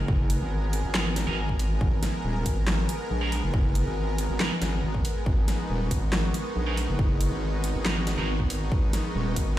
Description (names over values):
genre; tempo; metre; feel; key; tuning
heavy wobble dubstep; 139 BPM; 4/4; half-time; G# minor; A4 = 440 Hz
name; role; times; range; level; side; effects
supersaw pad; sustained chords; 0.0-9.6 s; G#3 to A#4; -35 LUFS; right 1 dB; sidechain pumping
wobble bass; bass; 0.0-9.6 s; D#1 to A#1; -27 LUFS; equal; chorus, overdrive
warbly tape-like pad; texture; 0.0-9.6 s; B3 to C#6; -36 LUFS; equal; chorus, built-in reverb, sidechain pumping
electronic kick drum; drums; 0.1-9.5 s; none; -26 LUFS; equal; none
dubstep drum kit; drums; 0.3-9.5 s; handclaps, hi-hat, snare drum; -30 LUFS; equal; overdrive
high-gain distorted guitar; stabs; 0.9-8.3 s; B3 to A#4; -35 LUFS; right 4 dB; distortion, vintage 12-bit sampler grit, ping-pong delay
room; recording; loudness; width
light reverb, digital ambience; played on a big sound system in a bare room, stone room reverb; -24 LUFS; side -14 dB against mid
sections
0.0-9.6 A section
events
none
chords
0.0 G#madd9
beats
| 0.08 0.52 0.95 1.38 | 1.81 2.24 2.67 3.10 | 3.54 3.97 4.40 4.83 | 5.26 5.70 6.13 6.56 | 6.99 7.42 7.85 8.29 | 8.72 9.15 9.58